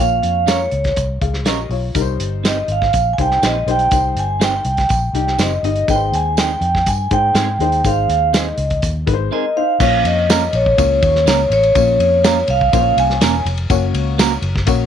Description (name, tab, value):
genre	uptempo 1960s-style soul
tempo	122 BPM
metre	4/4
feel	straight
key	unclear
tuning	A4 = 439 Hz
part	vibraphone with soft mallets	melody	0.0-13.4 s	Db5 to Ab5	-16 LUFS	right 1 dB	none
part	warm upright piano	accompaniment	0.0-14.9 s	G3 to F5	-23 LUFS	left 14 dB	none
part	vintage muted fingered electric bass	bass	0.0-14.9 s	Fb1 to Ab2	-20 LUFS	equal	none
part	warm soul drum kit	drums	0.2-14.8 s	crash cymbal, hi-hat, kick drum, ride cymbal, snare drum	-20 LUFS	equal	none
part	clean electric guitar	stabs	0.5-14.3 s	Bb3 to Db5	-22 LUFS	right 14 dB	none
part	tambourine	percussion	0.5-14.8 s	none	-31 LUFS	right 14 dB	none
room	light reverb, studio reverb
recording	1960s-style stereo with parts hard left and right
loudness	-13 LUFS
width	side -9 dB against mid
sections	0.0-9.8 A section; 9.8-14.9 B section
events	none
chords	0.0 Bbm; 1.9 Cm; 5.9 Ab; 9.8 Bbm; 13.7 Gb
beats	0.47 0.96 1.46 | 1.95 2.44 2.93 3.42 | 3.92 4.41 4.90 5.39 | 5.88 6.37 6.86 7.35 | 7.84 8.33 8.82 9.31 | 9.80 10.29 10.78 11.26 | 11.75 12.24 12.73 13.21 | 13.70 14.19 14.67